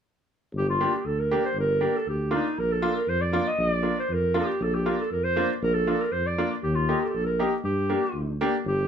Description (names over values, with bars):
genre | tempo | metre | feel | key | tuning
klezmer | 118 BPM | 2/4 | straight | G minor | A4 = 440 Hz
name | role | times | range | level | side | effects
mellow tuba | bass | 0.5-8.9 s | G1 to G2 | -29 LUFS | left 1 dB | none
warm clarinet | melody | 0.6-8.9 s | Eb4 to Eb5 | -26 LUFS | right 1 dB | plate reverb
bright upright piano | accompaniment | 0.8-8.5 s | Bb3 to G4 | -27 LUFS | equal | none
room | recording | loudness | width
moderate studio reverb, RT60 0.6 s | heard from further back in the room | -23 LUFS | side -8 dB against mid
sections
0.5-8.7 A section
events
none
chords
0.5 Gm; 2.6 Bb; 6.6 Eb; 7.6 Gm